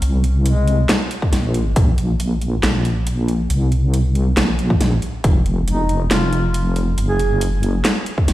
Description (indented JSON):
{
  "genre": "deep dubstep",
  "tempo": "138 BPM",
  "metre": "4/4",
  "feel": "half-time",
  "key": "unclear",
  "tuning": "A4 = 440 Hz",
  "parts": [
    { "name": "deep soft wobble bass", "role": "bass", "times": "0.0-8.3 s", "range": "F1 to C2", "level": "-17 LUFS", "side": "equal", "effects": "chorus" },
    { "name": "dubstep drum kit", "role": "drums", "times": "0.0-8.3 s", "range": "handclaps, hi-hat, snare drum", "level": "-21 LUFS", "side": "equal", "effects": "small room ambience" },
    { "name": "warm duduk", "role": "melody", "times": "0.5-0.8, 5.7-7.4 s", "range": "Ab3 to Ab4", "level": "-24 LUFS", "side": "right 1 dB", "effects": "dub echo" },
    { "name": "electronic kick drum", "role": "drums", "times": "1.2-1.9, 4.7-5.3, 8.2-8.3 s", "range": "none", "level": "-17 LUFS", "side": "equal", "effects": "small room ambience" }
  ],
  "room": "small room reverb",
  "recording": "played on a big sound system in a bare room, stone room reverb",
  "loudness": "-15 LUFS",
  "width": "side -15 dB against mid",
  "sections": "0.0-8.3 A section",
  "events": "none",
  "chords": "0.0 Bbsus2; 5.2 N.C."
}